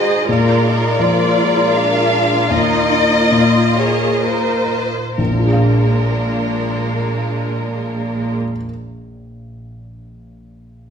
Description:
cinematic, emotional film score for orchestra; 60-87 BPM; 3/4; rubato; A4 = 435 Hz
warm studio violin section; melody; 0.0-8.4 s; Bb4 to F5; -20 LUFS; left 2 dB
rich studio violin section; second line; 0.0-8.4 s; D4 to Eb5; -22 LUFS; left 1 dB
felt-muted upright piano; accompaniment; 0.0-10.9 s; Bb1 to F5; -19 LUFS; left 1 dB
rich studio viola section; accompaniment; 0.0-8.4 s; Ab3 to F4; -22 LUFS; right 1 dB
warm studio cello section; bass; 0.0-8.4 s; Bb2 to Bb4; -22 LUFS; right 2 dB
wet recital hall reverb, RT60 1.2 s; recorded in a church or concert hall; -14 LUFS; side -7 dB against mid
0.0-5.2 A section; 5.2-10.9 B section
slowing down 0.0-5.2
0.3 Bb7; 2.5 Ebsus2; 5.2 Bb7

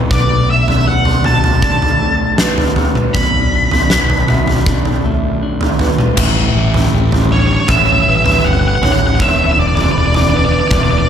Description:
post-rock; 79 BPM; 4/4; straight; B minor; A4 = 440 Hz
pedal steel guitar; sustained chords; 0.0-11.1 s; D3 to F#4; -28 LUFS; right 2 dB
clean electric guitar; arpeggios; 0.0-11.1 s; A2 to B4; -22 LUFS; left 2 dB; analog delay
vibraphone with medium mallets; arpeggios; 0.0-11.1 s; D4 to E5; -25 LUFS; right 4 dB; analog delay
fuzz fingered electric bass; bass; 0.0-11.0 s; E1 to B1; -17 LUFS; equal; overdrive
octave-fuzz lead guitar; melody; 0.1-11.1 s; C#5 to B5; -16 LUFS; equal; distortion, analog delay
huge arena drum kit; drums; 0.1-10.9 s; crash cymbal, kick drum, snare drum, toms; -14 LUFS; equal
light reverb, small room ambience; -11 LUFS; side -8 dB against mid
0.0-6.2 A section; 6.2-11.1 B section
0.1 Bm7; 6.2 A7; 9.2 Em7

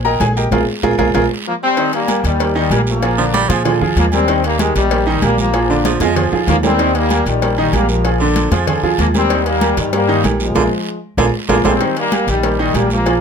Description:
latin, salsa; 191 BPM; 4/4; straight; Eb major; A4 = 442 Hz
clear grand piano; accompaniment; 0.0-13.2 s; D3 to Bb5; -18 LUFS; right 2 dB
upright bass; bass; 0.0-13.2 s; Bb1 to Bb2; -18 LUFS; equal
agogo bells and timbales; percussion; 0.0-13.2 s; -24 LUFS; right 5 dB
congas; percussion; 0.1-13.2 s; -23 LUFS; equal
cowbell; percussion; 0.2-13.2 s; -25 LUFS; left 9 dB
guiro; percussion; 0.2-13.2 s; -30 LUFS; right 5 dB
brilliant trombone section; melody; 1.5-13.2 s; Eb3 to C4; -17 LUFS; left 2 dB
breathy baritone saxophone; second line; 3.2-11.7 s; D3 to Ab3; -20 LUFS; right 6 dB
light reverb; close, detailed microphones; -13 LUFS; side -6 dB against mid
0.0-1.8 A section; 1.8-11.8 B section; 11.8-13.2 B section
grand piano solo 0.0-1.8; drum fill 0.5-1.8, 5.9-6.8, 10.9-11.8; band accent 0.5-1.8, 10.6-11.8
0.0 Eb; 0.5 Bb5; 1.8 Eb; 3.0 Bb7; 4.3 Eb; 5.5 Bb7; 6.8 Eb; 8.0 Bb7; 9.3 Eb; 10.6 Bb7(no3); 11.8 Eb

